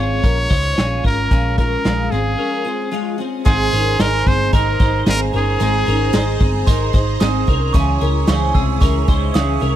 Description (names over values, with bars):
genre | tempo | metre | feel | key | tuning
jangly indie pop | 112 BPM | 4/4 | straight | Ab major | A4 = 442 Hz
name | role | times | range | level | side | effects
brilliant trumpet | melody | 0.0-6.9 s | Ab4 to Db5 | -21 LUFS | equal | slapback echo
picked twelve-string acoustic guitar | accompaniment | 0.0-9.8 s | Bb2 to C5 | -24 LUFS | right 6 dB | none
twelve-string electric guitar | arpeggios | 0.0-9.8 s | Ab3 to C5 | -24 LUFS | left 5 dB | ensemble chorus
vintage muted picked electric bass | bass | 0.0-9.8 s | G1 to Db2 | -19 LUFS | equal | none
raw garage drum kit | drums | 0.2-9.7 s | crash cymbal, hi-hat, kick drum, snare drum | -18 LUFS | equal | none
glockenspiel with rubber mallets | second line | 3.5-9.8 s | Bb5 to Fb6 | -26 LUFS | right 15 dB | none
phased string machine | sustained chords | 3.5-9.8 s | Fb4 to Bb5 | -30 LUFS | left 1 dB | ensemble chorus, phaser
room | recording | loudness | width
studio ambience | dry, close 1970s-style studio recording | -14 LUFS | side -12 dB against mid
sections
0.0-3.5 A section; 3.5-9.8 B section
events
break 2.4-3.5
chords
0.0 Bbm7; 3.5 Abadd9; 7.7 Dbm